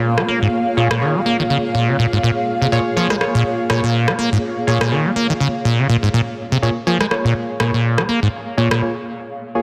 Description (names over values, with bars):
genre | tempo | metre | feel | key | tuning
acid house | 123 BPM | 4/4 | swing 56% on 16ths | Bb minor | A4 = 440 Hz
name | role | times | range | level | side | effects
dark analog pad | sustained chords | 0.0-8.8 s | F5 | -27 LUFS | equal | chorus
liquid acid bass | riff | 0.0-8.8 s | Ab2 to Bb3 | -20 LUFS | equal | chorus, tube saturation, cassette tape, dub echo
granular cloud pad | texture | 0.0-8.8 s | Bb3 to F5 | -28 LUFS | equal | built-in reverb
electronic rim click | drums | 0.2-8.8 s | none | -24 LUFS | equal | soft clipping on snare, low-pass filter on snare, low-pass filter on room
deep mellow chord stab | stabs | 0.8-9.6 s | Bb3 to Db5 | -26 LUFS | equal | chorus, dub echo
room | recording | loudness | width
light reverb | dense, heavily limited modern master | -18 LUFS | mono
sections
0.0-9.6 A section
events
break 8.8-9.6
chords
0.0 Bbm7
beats
| 0.04 0.53 1.01 1.50 | 1.99 2.48 2.97 3.45 | 3.94 4.43 4.92 5.41 | 5.89 6.38 6.87 7.36 | 7.84 8.33 8.82 9.31